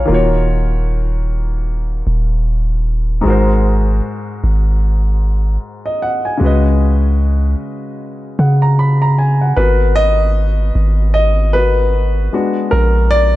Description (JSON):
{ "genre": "contemporary R&B", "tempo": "76 BPM", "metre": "4/4", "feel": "swing 58% on 16ths", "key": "unclear", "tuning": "A4 = 439 Hz", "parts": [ { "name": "warm concert grand piano", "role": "accompaniment", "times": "0.0-13.4 s", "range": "Ab2 to Cb6", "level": "-17 LUFS", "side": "left 1 dB", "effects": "none" }, { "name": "long sustained 808-style bass", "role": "bass", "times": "0.0-13.4 s", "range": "Eb1 to Db3", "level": "-13 LUFS", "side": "equal", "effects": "none" } ], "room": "studio reverb", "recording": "dark, warm production", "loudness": "-12 LUFS", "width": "side -16 dB against mid", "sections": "0.0-9.6 A section; 9.6-13.4 B section", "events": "grand piano solo 9.6-13.4", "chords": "0.1 Ebm7; 3.3 Ab9; 6.4 Db7sus4; 9.6 Abm9; 12.3 Bb7b9b13" }